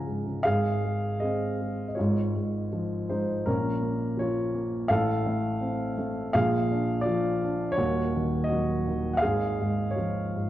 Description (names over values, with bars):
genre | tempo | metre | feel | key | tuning
classical, lyrical solo piano | 82 BPM | 4/4 | uneven beats, rubato | Db major | A4 = 439 Hz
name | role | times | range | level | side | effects
dark baby grand piano | solo | 0.0-10.5 s | Eb1 to Bb5 | -25 LUFS | equal | none
room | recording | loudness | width
moderate scoring stage reverb, RT60 2.1 s | dark, warm production | -25 LUFS | side -13 dB against mid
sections
0.5-10.5 A section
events
grand piano fill 0.0-0.5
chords
0.5 Ab; 2.0 Db/Ab; 3.5 Bbm; 4.9 F/A; 6.3 Bb7; 7.8 Ebm; 9.2 Db/Ab